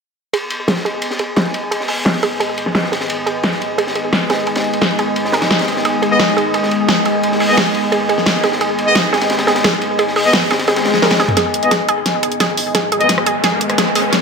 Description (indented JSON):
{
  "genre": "dark technical drum and bass",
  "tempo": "174 BPM",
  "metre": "4/4",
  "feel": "straight",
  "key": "G# minor",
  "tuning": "A4 = 440 Hz",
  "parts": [
    { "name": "deep dark ambient pad", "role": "sustained chords", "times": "2.2-14.2 s", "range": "G#3 to D#5", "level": "-23 LUFS", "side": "left 2 dB", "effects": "chorus, built-in reverb" },
    { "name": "wide unison pluck", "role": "arpeggios", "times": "0.3-14.0 s", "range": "G#4 to A#4", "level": "-20 LUFS", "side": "right 3 dB", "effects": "ping-pong delay" },
    { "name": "crunchy breakbeat drum kit", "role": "drums", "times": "0.3-11.4 s", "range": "hi-hat, ride cymbal, snare drum", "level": "-21 LUFS", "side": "equal", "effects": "high-pass filter on cymbals, high-pass filter on hats, high-pass filter on snare, high-pass filter on room" },
    { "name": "airy breathy pad", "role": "texture", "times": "0.6-14.2 s", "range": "B3 to G#5", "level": "-20 LUFS", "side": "equal", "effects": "chorus" },
    { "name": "dubstep drum kit", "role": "drums", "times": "0.7-14.2 s", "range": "hi-hat, rim click, snare drum, toms", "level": "-17 LUFS", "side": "equal", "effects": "low-pass filter on snare, low-pass filter on toms, low-pass filter on hats" },
    { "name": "warm brass ensemble", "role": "stabs", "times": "6.1-13.1 s", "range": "B3 to D#5", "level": "-18 LUFS", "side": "left 1 dB", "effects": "low-pass filter, ping-pong delay" },
    { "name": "swell and riser", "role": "sound effects", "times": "10.8-14.2 s", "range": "none", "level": "-22 LUFS", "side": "left 2 dB", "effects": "none" }
  ],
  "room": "moderate digital room reverb, RT60 1.2 s, small room ambience",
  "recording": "none",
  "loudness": "-13 LUFS",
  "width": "side -5 dB against mid",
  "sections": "0.3-11.4 A section; 11.4-14.2 B section",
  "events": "filter sweep on drum 0.3-11.4; filter sweep on synth arpeggio sound 0.3-11.4; swell 10.8-11.4; drum fill 11.0-11.4, 11.4-14.2; build-up 11.4-14.2; riser 11.4-14.2; filter sweep on brass ensemble 11.4-14.2",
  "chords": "0.3 G#m"
}